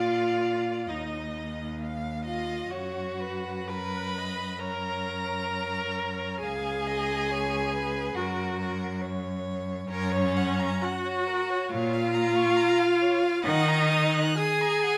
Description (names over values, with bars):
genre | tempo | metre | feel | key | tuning
classical, slow romantic movement for string quartet | 59-71 BPM | 4/4 | rubato | F# major from 9.9 s | A4 = 440 Hz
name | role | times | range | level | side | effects
rich violin | melody | 0.0-15.0 s | Bb4 to F#6 | -38 LUFS | equal | none
rich violin | second line | 0.0-15.0 s | Db5 to Cb6 | -36 LUFS | equal | none
rich viola | accompaniment | 0.0-15.0 s | Db4 to Cb5 | -30 LUFS | equal | none
clear cello | bass | 0.0-14.2 s | Db2 to D#3 | -34 LUFS | equal | none
room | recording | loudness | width
moderate recital hall reverb, RT60 1.4 s | none | -28 LUFS | mono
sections
0.0-15.0 A section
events
none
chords
0.0 Bb; 0.9 Ebsus2; 2.7 Gb; 6.4 Db7; 8.2 Gb; 11.7 A#m; 13.4 D#m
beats
0.89 1.79 | 2.70 3.69 4.59 5.50 | 6.40 7.29 8.16 9.01 | 9.88 10.82 11.70 12.56 | 13.44 14.38